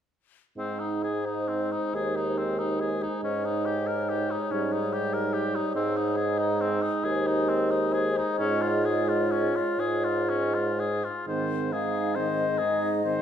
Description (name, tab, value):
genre	classical, slow romantic movement for wind quintet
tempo	39-49 BPM (dotted quarters)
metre	6/8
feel	rubato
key	Ab major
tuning	A4 = 440 Hz
part	mellow hollow concert flute	melody	0.6-13.2 s	C5 to F5	-32 LUFS	left 7 dB	none
part	warm oboe	second line	0.6-13.2 s	C4 to C5	-31 LUFS	left 3 dB	none
part	mellow French horn	accompaniment	0.6-13.2 s	Eb3 to Ab3	-34 LUFS	right 1 dB	none
part	warm clarinet	accompaniment	0.6-13.2 s	C4 to F4	-32 LUFS	right 6 dB	none
part	mellow bassoon	bass	0.6-13.2 s	Eb2 to Ab2	-29 LUFS	right 2 dB	none
room	wet recital hall reverb, RT60 1.6 s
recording	none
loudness	-24 LUFS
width	side -9 dB against mid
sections	0.6-11.3 A section; 11.3-13.2 B section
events	none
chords	0.6 Ab; 3.2 Eb7/Ab; 5.8 Ab; 8.4 Db/Ab; 11.3 Ab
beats	| 0.58 1.94 | 3.24 4.52 | 5.76 7.04 | 8.39 9.79 | 11.27 12.59